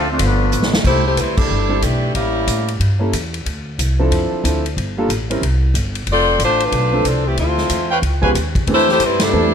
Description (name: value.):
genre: jazz, big band swing.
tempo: 184 BPM.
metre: 4/4.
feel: swing 62% on 8ths.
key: C major.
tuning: A4 = 440 Hz.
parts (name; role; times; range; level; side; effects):
mellow trumpet section; melody; 0.0-0.7 s; A3 to C5; -22 LUFS; left 2 dB; none.
brilliant trombone section; second line; 0.0-0.7 s; D3 to C4; -23 LUFS; right 1 dB; none.
upright bass; bass; 0.0-9.5 s; F1 to A2; -19 LUFS; equal; none.
swinging big-band drum kit; drums; 0.2-9.3 s; crash cymbal, hi-hat, kick drum, ride cymbal, snare drum; -22 LUFS; equal; none.
warm saxophone section; melody; 0.9-2.8, 6.1-9.5 s; E3 to D5; -16 LUFS; left 1 dB; none.
clear concert grand piano; accompaniment; 1.7-9.5 s; E3 to Bb4; -21 LUFS; right 1 dB; none.
warm trumpet section; stabs; 7.9-8.3 s; Cb5 to Ab5; -20 LUFS; right 1 dB; none.
room: light reverb.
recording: none.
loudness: -15 LUFS.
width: side -8 dB against mid.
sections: 0.8-9.5 A section.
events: drum fill 0.5-0.8; band accent 1.3, 9.2.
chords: 0.2 G9; 0.8 C69; 2.2 A7b9; 3.5 Dm9; 4.8 Gm9; 5.4 C5; 6.1 F6; 7.4 Dm9; 8.0 Db7#11; 8.7 C69.